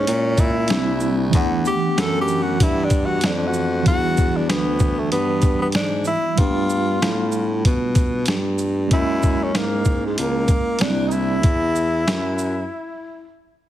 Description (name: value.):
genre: hip hop, jazz-hop.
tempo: 95 BPM.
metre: 4/4.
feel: swing 59% on 16ths.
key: E minor.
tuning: A4 = 440 Hz.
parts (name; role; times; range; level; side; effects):
breathy tenor saxophone; melody; 0.0-13.3 s; G#3 to A4; -23 LUFS; left 1 dB; none.
mellow tine electric piano; accompaniment; 0.0-11.4 s; E3 to F#5; -25 LUFS; right 1 dB; medium stereo tremolo.
breathy baritone saxophone; bass; 0.0-12.7 s; C2 to B2; -23 LUFS; equal; none.
boom bap sampler-style drum kit; drums; 0.1-12.6 s; hi-hat, kick drum, shaker, snare drum; -20 LUFS; equal; none.
room: light reverb.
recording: heavily compressed radio sound.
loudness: -17 LUFS.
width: side -12 dB against mid.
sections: 0.0-3.9 A section; 3.9-13.7 B section.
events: tenor saxophone solo 0.0-3.9; break 11.4-13.7.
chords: 0.0 F#13 (rootless); 0.7 C9; 1.3 Em11; 3.9 Em9; 6.4 G9; 8.9 F#13; 10.8 C9; 11.4 Esus2.